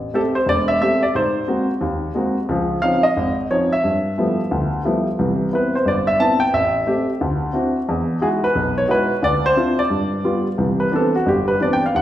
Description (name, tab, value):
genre	jazz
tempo	178 BPM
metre	4/4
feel	swing 62% on 8ths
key	C major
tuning	A4 = 439 Hz
part	warm baby grand piano	solo	0.0-12.0 s	E1 to A5	-17 LUFS	equal	none
room	wet recital hall reverb, RT60 1.4 s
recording	recorded in a church or concert hall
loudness	-17 LUFS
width	side -12 dB against mid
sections	0.0-10.6 A section; 10.6-12.0 B section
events	grand piano solo 10.6-12.0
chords	0.0 Am7; 1.1 Ab9; 2.5 Dbmaj9; 3.8 G13; 5.2 Cmaj7; 6.5 Am7; 7.2 D9; 7.9 Emaj9; 9.2 Dm9; 9.9 G7; 10.6 Cmaj9